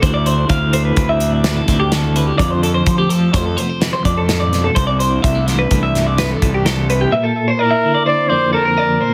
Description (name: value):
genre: math rock and midwest emo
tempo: 127 BPM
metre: 5/4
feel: straight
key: unclear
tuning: A4 = 440 Hz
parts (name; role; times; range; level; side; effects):
- twelve-string electric guitar; accompaniment; 0.0-9.1 s; F2 to G4; -23 LUFS; equal; tremolo
- twelve-string electric guitar; arpeggios; 0.0-9.1 s; G4 to F5; -22 LUFS; equal; warbly pitch drift, tape echo
- fuzz fingered electric bass; bass; 0.0-7.0 s; C2 to F3; -20 LUFS; equal; overdrive
- modern studio drum kit; drums; 0.0-7.0 s; hi-hat, kick drum, snare drum; -22 LUFS; equal; none
- breathy trumpet; melody; 7.6-9.1 s; Bb4 to D5; -17 LUFS; equal; none
room: light reverb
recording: heavily compressed radio sound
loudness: -16 LUFS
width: mono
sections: 0.0-7.1 A section; 7.1-9.1 B section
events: none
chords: 0.0 D7sus2; 2.4 F6; 4.8 C69; 7.1 Bbmaj9#11